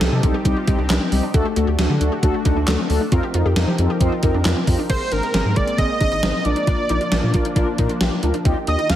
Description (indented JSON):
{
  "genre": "synth-pop",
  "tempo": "135 BPM",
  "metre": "4/4",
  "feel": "straight",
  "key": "unclear",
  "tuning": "A4 = 439 Hz",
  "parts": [
    { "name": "wide unison lead", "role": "melody", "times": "0.0-0.2, 4.9-9.0 s", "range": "A4 to F5", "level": "-24 LUFS", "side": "right 2 dB", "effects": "tape echo" },
    { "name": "mellow synth brass", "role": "accompaniment", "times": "0.0-9.0 s", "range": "G3 to C5", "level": "-24 LUFS", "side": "left 1 dB", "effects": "chorus" },
    { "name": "sweeping resonant pad", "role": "sustained chords", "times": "0.0-9.0 s", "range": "Eb3 to Bb4", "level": "-27 LUFS", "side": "left 1 dB", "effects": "chorus" },
    { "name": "rubbery square bass", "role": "bass", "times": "0.0-9.0 s", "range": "Ab1 to F3", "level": "-21 LUFS", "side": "equal", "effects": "none" },
    { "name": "gated 80s digital drum machine", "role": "drums", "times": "0.0-9.0 s", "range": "crash cymbal, handclaps, hi-hat, kick drum, snare drum", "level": "-21 LUFS", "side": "equal", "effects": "gated reverb, gated reverb snare, overdrive" },
    { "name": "analog pluck", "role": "arpeggios", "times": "0.1-9.0 s", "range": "C4 to G4", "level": "-29 LUFS", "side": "equal", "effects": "chorus, tape echo" }
  ],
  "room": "moderate recital hall reverb, RT60 1.3 s",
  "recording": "heavily compressed radio sound, multiband compression",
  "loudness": "-16 LUFS",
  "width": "side -12 dB against mid",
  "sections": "0.0-4.9 A section; 4.9-9.0 B section",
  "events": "none",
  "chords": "0.0 Cm; 1.3 D; 3.1 F7sus4; 4.9 Abadd9; 6.5 Bb; 8.5 Ebadd9",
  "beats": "0.01 0.45 0.90 | 1.34 1.79 2.23 2.67 | 3.12 3.56 4.01 4.45 | 4.90 5.34 5.79 6.23 | 6.67 7.12 7.56 8.01 | 8.45 8.90"
}